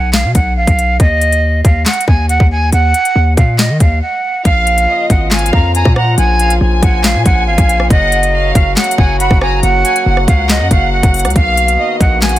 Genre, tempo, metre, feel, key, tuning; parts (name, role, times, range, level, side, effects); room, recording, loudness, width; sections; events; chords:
hip hop, drill; 139 BPM; 4/4; half-time; Bb phrygian; A4 = 439 Hz
breathy bright jazz flute; melody; 0.0-12.4 s; Eb5 to Bb5; -15 LUFS; right 2 dB; low-pass filter, digital delay
hard-hitting 808-style bass; bass; 0.0-12.4 s; Gb1 to Eb3; -14 LUFS; equal
drill drum kit; drums; 0.1-12.4 s; handclaps, hi-hat, kick drum, rim click, snare drum; -12 LUFS; equal
warm studio violin section; second line; 4.5-12.4 s; Eb5 to Cb6; -20 LUFS; equal; digital delay
clear French horn section; sustained chords; 4.5-12.4 s; Db3 to F#4; -21 LUFS; left 1 dB
studio ambience; dense, heavily limited modern master; -9 LUFS; side -14 dB against mid
0.0-4.5 A section; 4.5-12.4 B section
break 4.0-4.5
0.0 B5; 1.0 Ebm; 4.5 Bbm; 7.9 Gb; 11.4 Bmaj7